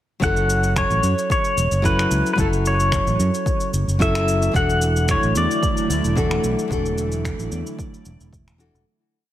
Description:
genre	sunset chillout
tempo	111 BPM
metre	4/4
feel	swing 54% on 16ths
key	F# minor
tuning	A4 = 439 Hz
part	pedal steel guitar	melody	0.2-8.3 s	A4 to F#5	-23 LUFS	left 1 dB	ping-pong delay
part	nylon-string guitar	accompaniment	0.2-8.8 s	E3 to A4	-24 LUFS	moving between left 3 dB and right 7 dB	auto-pan, ping-pong delay
part	fingered electric bass	bass	0.2-8.8 s	E1 to F#2	-22 LUFS	equal	tube saturation
part	cabasa and finger snaps	drums	0.2-8.8 s	none	-30 LUFS	equal	none
part	electronic kick drum	drums	0.2-8.4 s	none	-24 LUFS	equal	overdrive
part	airy breathy pad	sustained chords	4.8-8.8 s	D3 to E4	-27 LUFS	right 1 dB	chorus
room	moderate recital hall reverb, RT60 1.6 s, small room ambience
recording	none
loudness	-17 LUFS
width	side -12 dB against mid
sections	0.2-8.9 groove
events	fade-out 6.0-8.9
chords	0.2 F#m7; 4.5 E9sus4

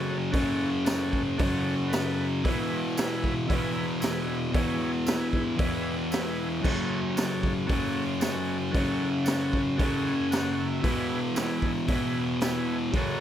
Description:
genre	garage rock duo or trio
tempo	114 BPM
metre	4/4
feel	straight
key	unclear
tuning	A4 = 439 Hz
part	combo organ	sustained chords	0.0-13.2 s	E4 to G#5	-36 LUFS	right 1 dB	none
part	thick fuzz guitar	riff	0.0-13.2 s	E2 to F#3	-27 LUFS	left 1 dB	distortion
part	raw garage drum kit	drums	0.3-13.1 s	crash cymbal, hi-hat, kick drum, snare drum	-30 LUFS	equal	none
part	tambourine	percussion	0.9-12.5 s	none	-41 LUFS	right 6 dB	none
room	light reverb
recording	none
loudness	-25 LUFS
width	side -10 dB against mid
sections	0.0-13.2 A section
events	transistor combo organ fill 9.8-10.8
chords	0.0 F#m; 2.4 E; 6.6 F#m; 10.8 E

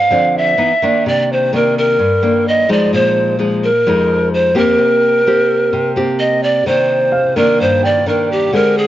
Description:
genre	bossa nova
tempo	128 BPM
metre	4/4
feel	straight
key	C minor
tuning	A4 = 440 Hz
part	breathy pan flute	melody	0.0-8.9 s	G4 to F5	-13 LUFS	right 1 dB	none
part	nylon-string guitar	accompaniment	0.0-8.9 s	F2 to G4	-16 LUFS	equal	none
part	warm baby grand piano	accompaniment	7.1-8.9 s	F5 to G5	-25 LUFS	right 2 dB	none
room	little or no reverb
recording	worn, warbling old tape, cassette tape, warbly pitch drift, nothing above 7.7 kHz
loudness	-11 LUFS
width	side -13 dB against mid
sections	0.0-8.9 A section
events	none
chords	0.0 G7sus4; 0.6 Badd11; 1.0 Cm9; 2.9 Bb7sus4; 4.8 Cm9

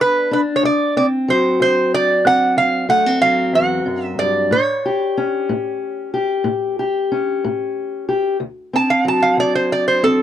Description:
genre	acoustic country blues, solo or duo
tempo	62 BPM (dotted quarters)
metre	12/8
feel	straight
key	unclear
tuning	A4 = 439 Hz
part	lap resonator guitar	melody	0.0-10.2 s	A4 to A5	-16 LUFS	right 2 dB	none
part	fingerpicked steel-string acoustic guitar	accompaniment	0.0-10.2 s	D2 to G4	-19 LUFS	left 3 dB	none
room	little or no reverb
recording	dry, close 1970s-style studio recording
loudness	-15 LUFS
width	side -10 dB against mid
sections	0.0-8.4 A section; 8.4-10.2 B section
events	resonator guitar played with a steel bar solo 8.4-10.2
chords	0.0 G; 0.6 D7; 4.5 A7; 8.4 D7

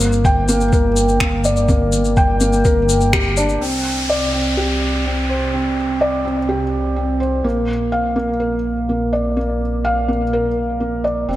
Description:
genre	piano and strings electronica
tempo	125 BPM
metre	4/4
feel	straight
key	unclear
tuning	A4 = 442 Hz
part	felt-muted upright piano	riff	0.0-11.4 s	Bb3 to G5	-18 LUFS	equal	tape echo
part	dark detuned saw bass	bass	0.0-11.4 s	F1 to C2	-22 LUFS	equal	sidechain pumping
part	electronic shaker and finger snaps	drums	0.0-3.6 s	none	-24 LUFS	left 2 dB	overdrive, low-pass filter on perc, low-pass filter on snare, low-pass filter on room
part	electronic kick drum	drums	0.2-3.2 s	none	-16 LUFS	equal	none
part	downlifter	sound effects	3.6-7.4 s	none	-25 LUFS	equal	none
room	light reverb, digital ambience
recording	none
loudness	-15 LUFS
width	side -14 dB against mid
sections	0.0-3.6 A section; 3.6-11.4 B section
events	band accent 3.1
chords	0.0 Gm; 3.6 Csus2; 7.4 Bb

